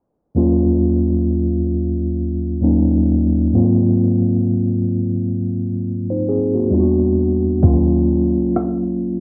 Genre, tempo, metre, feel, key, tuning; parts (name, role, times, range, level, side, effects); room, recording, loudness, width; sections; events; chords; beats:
lo-fi hip hop; 66 BPM; 4/4; swing 62% on 16ths; Eb dorian; A4 = 440 Hz
mellow tine electric piano; accompaniment; 0.3-9.2 s; Eb2 to C5; -18 LUFS; equal; cassette tape
deep dub fingered electric bass; bass; 7.6-9.2 s; Db2 to Eb2; -24 LUFS; equal
trip hop sampler-style drum kit; drums; 7.6-8.8 s; hi-hat, kick drum, rim click; -19 LUFS; equal
moderate small room ambience, RT60 0.5 s; home recording on cassette, low-pass filter; -17 LUFS; mono
0.4-9.2 A section
filter sweep 0.4-9.2
0.4 Ebm9; 3.5 Ab13; 6.7 Em9; 7.6 Ebm9
| 0.36 1.26 2.17 3.08 | 3.99 4.90 5.81 6.72 | 7.63 8.54